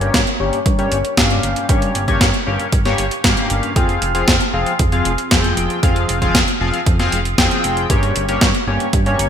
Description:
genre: italo disco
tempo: 116 BPM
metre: 4/4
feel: straight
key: unclear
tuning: A4 = 440 Hz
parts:
  - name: chorused polysynth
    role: stabs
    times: 0.0-9.3 s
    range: G2 to G5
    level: -18 LUFS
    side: left 2 dB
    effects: ping-pong delay
  - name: chorused synth bass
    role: bass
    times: 0.0-9.3 s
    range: F1 to G2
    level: -21 LUFS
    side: equal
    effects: none
  - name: clean 12-bit digital drum machine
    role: drums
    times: 0.0-9.3 s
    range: hi-hat, snare drum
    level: -19 LUFS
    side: equal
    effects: overdrive, gated reverb
  - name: electronic kick drum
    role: drums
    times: 0.1-9.0 s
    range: none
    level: -18 LUFS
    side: right 1 dB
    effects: none
room: moderate lush hall reverb, RT60 1.8 s, digital ambience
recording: bright 1980s-style digital production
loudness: -14 LUFS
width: side -8 dB against mid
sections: 0.0-9.3 A section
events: none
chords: 0.0 Gdim; 3.8 Fm; 7.9 Gdim

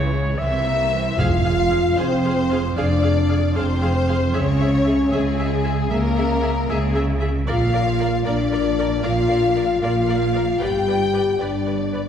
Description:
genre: cinematic, epic orchestral film score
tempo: 76 BPM (dotted quarters)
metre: 6/8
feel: straight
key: F dorian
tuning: A4 = 440 Hz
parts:
  - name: warm symphonic violin section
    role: melody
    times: 0.0-12.1 s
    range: G#4 to G5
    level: -29 LUFS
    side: left 3 dB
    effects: none
  - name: warm studio violin section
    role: second line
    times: 0.0-12.1 s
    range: Bb3 to G5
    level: -28 LUFS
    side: left 3 dB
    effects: none
  - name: bright symphonic viola section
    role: accompaniment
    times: 0.0-12.0 s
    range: E3 to F5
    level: -30 LUFS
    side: equal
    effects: none
  - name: dark French horn section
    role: sustained chords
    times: 0.0-12.1 s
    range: E3 to Bb4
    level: -22 LUFS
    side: left 2 dB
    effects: none
  - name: clear trumpet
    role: stabs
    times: 0.0-1.2 s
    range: C#5 to E5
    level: -26 LUFS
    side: left 1 dB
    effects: none
  - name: rich symphonic cello section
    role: bass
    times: 0.0-12.1 s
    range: F2 to C#3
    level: -25 LUFS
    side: right 2 dB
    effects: none
  - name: rich symphonic double bass section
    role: bass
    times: 0.0-12.1 s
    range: F1 to C#2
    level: -24 LUFS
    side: right 2 dB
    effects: none
  - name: timpani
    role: percussion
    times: 1.2-1.9 s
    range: F2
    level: -24 LUFS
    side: right 1 dB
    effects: none
  - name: impact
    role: sound effects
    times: 1.2-2.8 s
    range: none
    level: -29 LUFS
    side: equal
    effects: none
room: wet scoring stage reverb, RT60 1.8 s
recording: heard from further back in the room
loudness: -17 LUFS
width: side -8 dB against mid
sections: 0.0-1.2 A section; 1.2-12.1 B section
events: impact 1.2-2.8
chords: 0.4 C7; 1.2 Fm; 4.3 Dbm; 7.5 Bb; 10.6 G

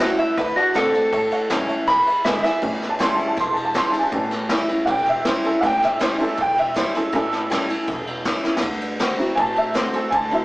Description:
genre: rockabilly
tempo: 160 BPM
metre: 4/4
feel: straight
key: A mixolydian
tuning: A4 = 440 Hz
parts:
  - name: electric guitar through a small old amp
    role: melody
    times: 0.0-2.6 s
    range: F#4 to B5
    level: -19 LUFS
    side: equal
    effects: spring reverb
  - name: honky-tonk upright piano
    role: accompaniment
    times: 0.0-10.4 s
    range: F#3 to C6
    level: -22 LUFS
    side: right 1 dB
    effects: none
  - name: picked steel-string acoustic guitar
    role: accompaniment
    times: 0.0-10.4 s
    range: E2 to F#4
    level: -25 LUFS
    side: equal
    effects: none
  - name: upright bass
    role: bass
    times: 0.0-10.4 s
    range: E1 to D2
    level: -35 LUFS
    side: equal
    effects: none
  - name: vintage brush drum kit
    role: drums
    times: 0.0-10.4 s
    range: kick drum, ride cymbal, snare drum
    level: -25 LUFS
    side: equal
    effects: none
room: wet small room reverb, RT60 0.5 s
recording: rough rehearsal-room recording, warm saturation, small speaker sound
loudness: -18 LUFS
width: side -20 dB against mid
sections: 0.0-2.6 A section; 2.6-10.4 B section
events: honky-tonk piano solo 2.6-10.4; drum fill 8.4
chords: 0.4 D7; 1.1 A7; 1.9 E7; 2.6 A7; 8.6 D7

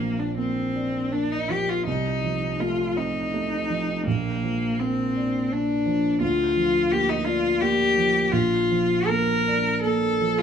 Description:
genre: classical, romantic duo for cello and grand piano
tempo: 84 BPM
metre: 3/4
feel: uneven beats, rubato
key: Bb major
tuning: A4 = 439 Hz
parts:
  - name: clear cello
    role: melody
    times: 0.0-10.4 s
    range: Bb3 to Bb4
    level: -23 LUFS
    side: left 3 dB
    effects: none
  - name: dark baby grand piano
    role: accompaniment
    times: 0.0-10.4 s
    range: Bb1 to D4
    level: -26 LUFS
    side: right 4 dB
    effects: none
room: wet stone room reverb, RT60 1.3 s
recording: none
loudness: -21 LUFS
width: side -8 dB against mid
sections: 0.0-10.4 A section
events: none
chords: 0.0 Bb; 1.9 F7/C; 4.1 Bb; 6.2 Bb/D; 8.3 Bb

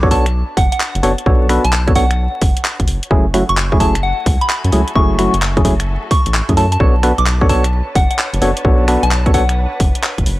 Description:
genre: UK garage, two-step garage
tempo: 130 BPM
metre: 4/4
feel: swing 65% on 16ths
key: B dorian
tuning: A4 = 440 Hz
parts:
  - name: percussive organ stab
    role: stabs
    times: 0.0-9.4 s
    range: F#3 to C#5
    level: -17 LUFS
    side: equal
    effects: chorus, cassette tape
  - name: rubbery square bass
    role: bass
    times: 0.0-10.4 s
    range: F#1 to F#2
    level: -16 LUFS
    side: equal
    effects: none
  - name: electronic kick drum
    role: drums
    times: 0.0-10.2 s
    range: none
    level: -15 LUFS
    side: equal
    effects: none
  - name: muted studio string section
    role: texture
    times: 0.0-10.4 s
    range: D4 to A5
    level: -32 LUFS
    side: left 1 dB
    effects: sidechain pumping
  - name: soft synth bell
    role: melody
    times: 0.1-9.8 s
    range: F#5 to D6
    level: -20 LUFS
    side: equal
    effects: chorus, phaser, tape echo
  - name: house drum kit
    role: drums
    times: 0.1-10.4 s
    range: finger snaps, handclaps, hi-hat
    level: -21 LUFS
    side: equal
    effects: none
room: little or no reverb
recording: dry, gritty hardware recording, vinyl crackle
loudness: -12 LUFS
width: side -17 dB against mid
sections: 0.0-10.4 A section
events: fade-in on string section 0.0-10.4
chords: 0.0 Bm9; 3.1 F#m9; 6.8 Bm9

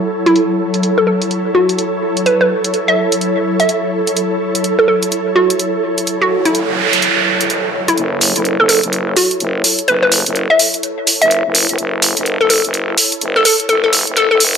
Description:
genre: bass house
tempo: 126 BPM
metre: 4/4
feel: swing 61% on 16ths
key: F# minor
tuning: A4 = 441 Hz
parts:
  - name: ethereal airy pad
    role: texture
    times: 0.0-14.6 s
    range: F#3 to C#5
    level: -18 LUFS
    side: equal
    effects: ensemble chorus, built-in reverb
  - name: hollow square pluck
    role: melody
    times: 0.3-14.4 s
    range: E4 to E5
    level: -15 LUFS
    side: equal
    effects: chorus, tape echo
  - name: electronic hi-hat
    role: drums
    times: 0.3-14.6 s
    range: none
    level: -14 LUFS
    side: right 1 dB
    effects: overdrive, low-pass filter on hats
  - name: noise sweep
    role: sound effects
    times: 6.3-8.0 s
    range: none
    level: -17 LUFS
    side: right 5 dB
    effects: none
  - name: growling FM bass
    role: bass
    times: 8.0-14.6 s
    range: F#1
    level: -19 LUFS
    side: equal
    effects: tube saturation, high-pass filter
room: moderate digital room reverb, RT60 1.2 s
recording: high-pass filter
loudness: -12 LUFS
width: side -7 dB against mid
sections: 0.0-8.0 A section; 8.0-14.6 B section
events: noise sweep 6.3-8.0; build-up 8.0-14.6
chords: 0.0 F#m

